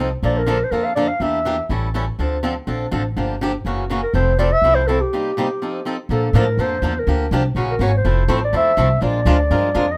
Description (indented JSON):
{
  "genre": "acoustic string swing (jazz manouche)",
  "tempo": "246 BPM",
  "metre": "4/4",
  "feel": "swing 54% on 8ths",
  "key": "unclear",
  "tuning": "A4 = 438 Hz",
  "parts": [
    { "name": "picked swing-style acoustic guitar", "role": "accompaniment", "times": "0.0-9.9 s", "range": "C3 to Bb4", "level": "-24 LUFS", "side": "equal", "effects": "none" },
    { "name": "upright bass", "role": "bass", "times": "0.0-10.0 s", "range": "F1 to Bb2", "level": "-22 LUFS", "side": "equal", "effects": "none" },
    { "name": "dark clarinet", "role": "melody", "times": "0.2-1.7, 4.0-10.0 s", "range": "G4 to F5", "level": "-22 LUFS", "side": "equal", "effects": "none" }
  ],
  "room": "light reverb",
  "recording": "none",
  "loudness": "-19 LUFS",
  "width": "mono",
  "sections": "0.0-6.1 A section; 6.1-10.0 B section",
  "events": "break 5.1-6.1",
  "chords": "0.2 Bbmaj7; 1.2 Em7b5; 1.7 A7; 2.2 Dm7; 3.2 Gm7; 3.6 Gb7; 4.1 Fmaj7; 5.1 Cm7; 5.6 F7; 6.1 Bbmaj7; 7.1 Gm7; 7.6 Gb9; 8.0 Fmaj7; 9.0 Bb7",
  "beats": "| 0.23 0.47 0.71 0.96 | 1.20 1.45 1.69 1.94 | 2.18 2.43 2.67 2.92 | 3.16 3.41 3.65 3.90 | 4.14 4.38 4.63 4.87 | 5.12 5.36 5.61 5.85 | 6.09 6.34 6.58 6.83 | 7.07 7.31 7.56 7.80 | 8.04 8.29 8.53 8.78 | 9.02 9.26 9.51 9.75"
}